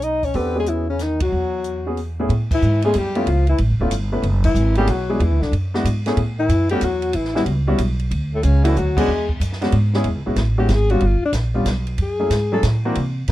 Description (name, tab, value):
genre	jazz, small-group swing and bop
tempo	186 BPM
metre	3/4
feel	swing 64% on 8ths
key	A major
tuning	A4 = 440 Hz
part	warm alto saxophone	melody	0.0-12.6 s	A3 to D#5	-22 LUFS	left 3 dB	none
part	bright trombone	second line	0.0-9.3 s	A2 to D#4	-27 LUFS	right 3 dB	none
part	upright bass	bass	0.0-13.3 s	C#1 to C3	-19 LUFS	right 1 dB	none
part	compact cocktail drum kit	drums	0.0-13.3 s	crash cymbal, hi-hat, kick drum, ride cymbal, snare drum	-29 LUFS	equal	none
part	warm concert grand piano	accompaniment	0.3-13.3 s	A2 to B4	-23 LUFS	left 1 dB	none
room	little or no reverb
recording	dark, warm production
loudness	-17 LUFS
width	side -15 dB against mid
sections	0.0-2.3 A section; 2.3-10.1 B section; 10.1-13.3 C section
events	band accent 1.2, 2.5, 4.4, 8.9; alto saxophone solo 10.1-13.3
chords	0.4 E69; 2.3 Amaj9; 3.3 C#7alt; 4.2 F#9sus4; 5.2 E9; 6.2 A5; 7.2 A13; 8.1 Dmaj9; 9.1 E69; 11.0 G; 12.0 F#m9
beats	0.03 | 0.35 0.68 1.00 | 1.32 1.65 1.98 | 2.30 2.62 2.95 | 3.27 3.60 3.92 | 4.24 4.57 4.89 | 5.21 5.54 5.86 | 6.18 6.50 6.83 | 7.15 7.47 7.79 | 8.12 8.44 8.76 | 9.09 9.41 9.73 | 10.05 10.38 10.70 | 11.03 11.35 11.67 | 11.99 12.32 12.64 | 12.96 13.29